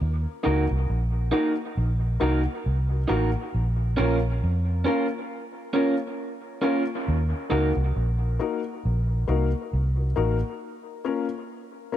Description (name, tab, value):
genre	reggae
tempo	68 BPM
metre	4/4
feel	swing 58% on 16ths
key	unclear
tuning	A4 = 440 Hz
part	vintage muted fingered electric bass	bass	0.0-10.4 s	A1 to F2	-23 LUFS	equal	none
part	electric guitar through a small old amp	accompaniment	0.4-7.7 s	Db4 to Bb4	-28 LUFS	right 4 dB	dub echo
part	dark upright piano	stabs	0.4-12.0 s	Bb3 to Bb4	-30 LUFS	left 7 dB	dub echo
room	small room ambience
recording	dark, warm production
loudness	-23 LUFS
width	side -11 dB against mid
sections	0.0-12.0 A section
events	break 10.6-12.0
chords	0.0 Ebm; 3.5 Bbm; 7.1 Ebm; 10.6 Bbm